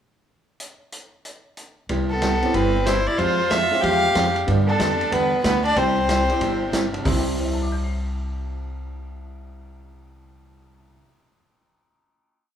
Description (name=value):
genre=country, western swing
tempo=186 BPM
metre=4/4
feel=swing 64% on 8ths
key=C major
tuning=A4 = 444 Hz
part: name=vintage drum kit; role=drums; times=0.6-7.1 s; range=hi-hat, kick drum, ride cymbal, snare drum, toms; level=-29 LUFS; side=equal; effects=none
part: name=archtop guitar, miked and amplified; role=accompaniment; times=1.9-11.0 s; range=C3 to G4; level=-26 LUFS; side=right 2 dB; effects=none
part: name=upright bass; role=bass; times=1.9-11.0 s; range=G1 to G2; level=-26 LUFS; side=equal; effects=none
part: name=clear fiddle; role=melody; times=2.1-6.7 s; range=A4 to F5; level=-23 LUFS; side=equal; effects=none
part: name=rich fiddle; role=second line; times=2.1-6.7 s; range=B3 to G4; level=-24 LUFS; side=right 1 dB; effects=none
part: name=warm upright piano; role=accompaniment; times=2.4-11.3 s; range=C2 to C7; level=-30 LUFS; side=left 2 dB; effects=none
room=moderate large studio reverb, RT60 1.2 s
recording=band playing live in one room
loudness=-18 LUFS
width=side -9 dB against mid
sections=0.6-1.9 pickup bar; 1.9-7.1 A section; 7.1-9.6 final chord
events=none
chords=0.6 N.C.; 1.9 Cmaj7; 3.2 Fmadd9; 4.5 G; 5.8 C